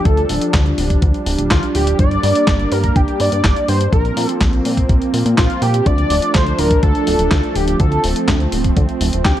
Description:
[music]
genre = italo disco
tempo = 124 BPM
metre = 4/4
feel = straight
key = unclear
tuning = A4 = 440 Hz
[part]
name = wide unison lead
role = melody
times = 0.0-9.4 s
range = F4 to D5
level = -20 LUFS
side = equal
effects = analog chorus, ping-pong delay
[part]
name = warm analog pad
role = sustained chords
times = 0.0-9.4 s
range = F3 to D4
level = -20 LUFS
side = right 2 dB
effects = lush chorus
[part]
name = chorused synth bass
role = bass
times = 0.1-9.3 s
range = D1 to Bb2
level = -18 LUFS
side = equal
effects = none
[part]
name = clean 12-bit digital drum machine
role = drums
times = 0.1-9.4 s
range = handclaps, hi-hat, snare drum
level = -22 LUFS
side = equal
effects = none
[part]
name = electronic kick drum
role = drums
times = 0.1-9.3 s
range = none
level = -16 LUFS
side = equal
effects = none
[sound]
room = light reverb, digital ambience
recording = dark, warm production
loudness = -13 LUFS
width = side -12 dB against mid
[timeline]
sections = 0.0-9.4 A section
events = none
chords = 0.0 Dm; 2.0 Gm; 3.9 Bbsus2; 5.9 Dm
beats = | 0.06 0.54 1.02 1.51 | 1.99 2.47 2.96 3.44 | 3.93 4.41 4.89 5.38 | 5.86 6.34 6.83 7.31 | 7.80 8.28 8.77 9.25

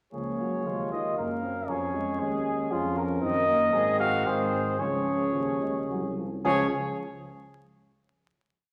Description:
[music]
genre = classical, brass quintet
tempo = 108-120 BPM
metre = 3/4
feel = rubato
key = Db major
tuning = A4 = 440 Hz
[part]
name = mellow trumpet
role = melody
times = 0.1-6.7 s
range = Ab4 to F5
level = -31 LUFS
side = equal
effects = none
[part]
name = warm flugelhorn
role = second line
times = 0.1-6.7 s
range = F4 to Bb4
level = -36 LUFS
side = equal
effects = none
[part]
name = clear French horn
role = accompaniment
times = 0.1-6.7 s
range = Ab3 to Db4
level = -34 LUFS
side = equal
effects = none
[part]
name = clear euphonium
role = accompaniment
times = 0.1-6.7 s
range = Db3 to Ab3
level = -38 LUFS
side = equal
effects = none
[part]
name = mellow tuba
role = bass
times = 0.1-6.7 s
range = C2 to Ab2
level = -37 LUFS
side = equal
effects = none
[sound]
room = wet recital hall reverb, RT60 1.5 s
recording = vinyl crackle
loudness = -28 LUFS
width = mono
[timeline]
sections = 0.1-6.4 A section; 6.4-8.1 final chord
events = none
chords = 0.1 Db; 3.2 Ebm/Gb; 3.7 Ab7; 4.8 Db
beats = | 0.13 0.66 1.18 | 1.70 2.21 2.72 | 3.23 3.74 4.26 | 4.80 5.35 5.90 | 6.45

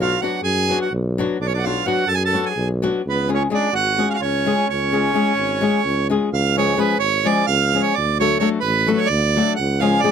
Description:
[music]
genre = balkan folk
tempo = 256 BPM (eighths)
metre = 7/8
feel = straight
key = C# phrygian dominant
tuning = A4 = 441 Hz
[part]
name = accordion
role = melody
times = 0.0-10.1 s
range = B4 to A5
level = -20 LUFS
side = right 8 dB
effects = none
[part]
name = warm trumpet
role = second line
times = 0.0-6.1 s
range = B3 to A4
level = -26 LUFS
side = left 6 dB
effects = none
[part]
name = flamenco guitar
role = accompaniment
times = 0.0-10.1 s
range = E#3 to A4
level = -20 LUFS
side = left 4 dB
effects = none
[part]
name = mellow tuba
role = bass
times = 0.0-10.0 s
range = G#1 to F#2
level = -23 LUFS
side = equal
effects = none
[sound]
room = light reverb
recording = close, detailed microphones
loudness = -17 LUFS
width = side -7 dB against mid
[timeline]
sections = 0.0-6.3 A section; 6.3-10.1 B section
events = none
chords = 0.0 Bm; 3.1 C#; 8.0 D; 9.6 C#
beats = 0.00 0.23 0.47 0.71 0.94 1.18 | 1.41 1.65 1.88 2.12 2.35 2.59 2.82 | 3.06 3.29 3.52 3.76 3.99 4.23 4.46 | 4.70 4.93 5.16 5.40 5.63 5.87 6.10 | 6.33 6.57 6.80 7.03 7.27 7.50 7.73 | 7.96 8.20 8.43 8.66 8.90 9.13 9.36 | 9.60 9.83 10.06

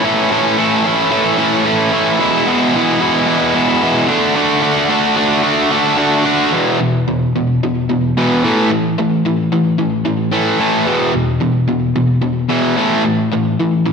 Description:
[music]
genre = rock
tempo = 111 BPM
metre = 4/4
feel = straight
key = E mixolydian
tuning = A4 = 439 Hz
[part]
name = cranked stack guitar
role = solo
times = 0.0-13.9 s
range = E2 to F#4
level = -12 LUFS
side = equal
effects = overdrive, slapback echo
[sound]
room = wet lush hall reverb, RT60 1.8 s, digital ambience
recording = big arena sound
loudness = -12 LUFS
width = side -6 dB against mid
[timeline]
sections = 0.0-6.5 A section; 6.5-13.9 B section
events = none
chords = 0.0 A; 2.2 E; 4.1 D; 6.5 E5; 8.4 A5; 10.9 E5; 12.8 A5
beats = | 0.05 0.58 1.12 1.67 | 2.21 2.75 3.29 3.83 | 4.37 4.91 5.45 5.99 | 6.53 7.07 7.61 8.15 | 8.70 9.24 9.78 10.32 | 10.87 11.41 11.95 12.49 | 13.04 13.58

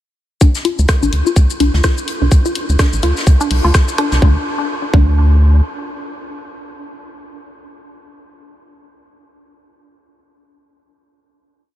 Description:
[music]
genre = minimal techno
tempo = 126 BPM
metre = 4/4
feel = swing 58% on 16ths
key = D minor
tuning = A4 = 440 Hz
[part]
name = resonant blip pluck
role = riff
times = 0.4-5.1 s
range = D4 to F4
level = -20 LUFS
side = left 2 dB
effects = phaser, cassette tape, sidechain pumping, ping-pong delay
[part]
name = electronic kick drum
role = drums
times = 0.4-5.1 s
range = none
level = -11 LUFS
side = equal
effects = studio reverb
[part]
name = garage drum kit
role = drums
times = 0.4-4.2 s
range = hi-hat, rim click, shaker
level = -24 LUFS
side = left 1 dB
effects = high-pass filter on perc, studio reverb, high-pass filter on hats, high-pass filter on snare
[part]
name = jazz brush drum kit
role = drums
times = 0.4-4.2 s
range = hi-hat, snare drum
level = -29 LUFS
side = left 2 dB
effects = sidechain pumping on hats, high-pass filter on hats, studio reverb, high-pass filter on snare, high-pass filter on room
[part]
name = rubbery square bass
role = bass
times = 0.8-5.6 s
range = A1 to D2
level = -12 LUFS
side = equal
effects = sidechain pumping
[sound]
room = light reverb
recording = none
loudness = -12 LUFS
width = side -13 dB against mid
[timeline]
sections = 0.4-4.2 build; 4.2-8.0 final chord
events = build-up 0.4-4.2; filter sweep on synth pluck 0.4-4.2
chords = 0.4 Dm; 4.2 N.C.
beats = | 0.41 0.89 1.36 1.84 | 2.32 2.79 3.27 3.75 | 4.22 4.70 5.17

